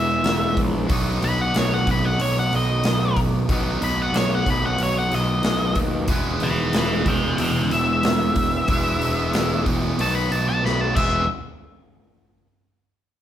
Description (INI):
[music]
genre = blues rock power trio and southern rock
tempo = 92 BPM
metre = 4/4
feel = straight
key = E major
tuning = A4 = 439 Hz
[part]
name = octave-fuzz lead guitar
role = melody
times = 0.0-11.3 s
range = C#5 to B5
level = -24 LUFS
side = left 1 dB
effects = distortion
[part]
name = sludgy distorted guitar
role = riff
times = 0.0-11.2 s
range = B2 to G#4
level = -24 LUFS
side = right 1 dB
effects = overdrive
[part]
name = fuzz picked electric bass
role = bass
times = 0.0-11.3 s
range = E1 to D#2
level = -25 LUFS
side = equal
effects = overdrive
[part]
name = big rock drum kit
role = drums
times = 0.2-11.1 s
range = crash cymbal, hi-hat, kick drum, snare drum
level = -26 LUFS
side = equal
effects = none
[sound]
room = moderate large studio reverb, RT60 1.0 s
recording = band playing live in one room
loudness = -18 LUFS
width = side -10 dB against mid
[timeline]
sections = 0.0-11.3 A section; 11.3-13.2 B section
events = lead electric guitar solo 0.0-11.3; drum fill 10.6-11.3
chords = 0.0 E; 0.9 B; 6.1 E; 10.0 B; 11.0 E; 11.3 N.C.